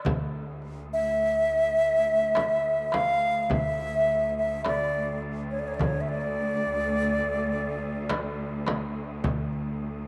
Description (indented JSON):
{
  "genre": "Arabic maqam ensemble",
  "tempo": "104 BPM (eighths)",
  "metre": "10/8",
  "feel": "straight",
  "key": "D maqam nahawand",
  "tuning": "A4 = 437 Hz",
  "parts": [
    { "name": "bright wooden flute", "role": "melody", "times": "0.0-8.6 s", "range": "C#5 to F5", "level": "-27 LUFS", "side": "equal", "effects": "none" },
    { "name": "darbuka", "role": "percussion", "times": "0.0-9.7 s", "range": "none", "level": "-36 LUFS", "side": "equal", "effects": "none" },
    { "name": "rich symphonic cello section", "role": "drone", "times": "0.1-10.1 s", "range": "D2", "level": "-36 LUFS", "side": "equal", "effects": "none" },
    { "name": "frame drum", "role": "percussion", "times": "0.1-9.5 s", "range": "none", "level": "-34 LUFS", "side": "equal", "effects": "none" }
  ],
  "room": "wet spring reverb, RT60 2.8 s",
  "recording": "none",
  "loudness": "-27 LUFS",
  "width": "mono",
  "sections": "0.1-10.1 A section",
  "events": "none",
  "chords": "none",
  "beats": "| 0.06 0.63 1.20 1.78 2.35 2.93 3.50 4.08 4.65 5.23 | 5.80 6.38 6.95 7.53 8.10 8.68 9.25 9.82"
}